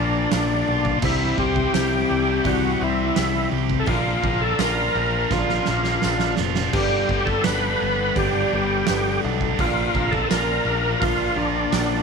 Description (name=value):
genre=classic rock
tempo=84 BPM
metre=4/4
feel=straight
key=unclear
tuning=A4 = 440 Hz
part: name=overdriven tonewheel organ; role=melody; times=0.0-12.0 s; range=D4 to B4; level=-23 LUFS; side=equal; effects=slow rotary speaker, chorus vibrato, tape echo
part: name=dark upright piano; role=accompaniment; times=0.0-12.0 s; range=G3 to D5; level=-35 LUFS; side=right 13 dB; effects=none
part: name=fingerpicked twelve-string acoustic guitar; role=accompaniment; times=0.0-12.0 s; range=G2 to G4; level=-34 LUFS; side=right 14 dB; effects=none
part: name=overdriven electric guitar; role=riff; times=0.0-12.0 s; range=G2 to C5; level=-26 LUFS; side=left 16 dB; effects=none
part: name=tight distorted guitar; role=riff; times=0.0-12.0 s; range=G2 to C5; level=-28 LUFS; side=right 14 dB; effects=distortion
part: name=modern bright picked electric bass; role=bass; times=0.0-12.0 s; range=F1 to C2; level=-27 LUFS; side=left 1 dB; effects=none
part: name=huge arena drum kit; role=drums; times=0.3-11.9 s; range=crash cymbal, hi-hat, kick drum, snare drum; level=-27 LUFS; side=right 4 dB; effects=none
part: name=tambourine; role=percussion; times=0.3-11.9 s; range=none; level=-36 LUFS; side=left 18 dB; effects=none
room=light reverb, studio ambience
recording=1960s-style stereo with parts hard left and right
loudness=-19 LUFS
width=side -5 dB against mid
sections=0.0-12.0 A section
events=drum fill 5.3-6.7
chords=0.0 Bb; 1.0 C; 3.9 Bb; 6.7 G; 9.6 Bb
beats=0.33 | 1.04 1.75 2.46 3.17 | 3.88 4.60 5.31 6.03 | 6.74 7.45 8.17 8.88 | 9.59 10.31 11.02 11.73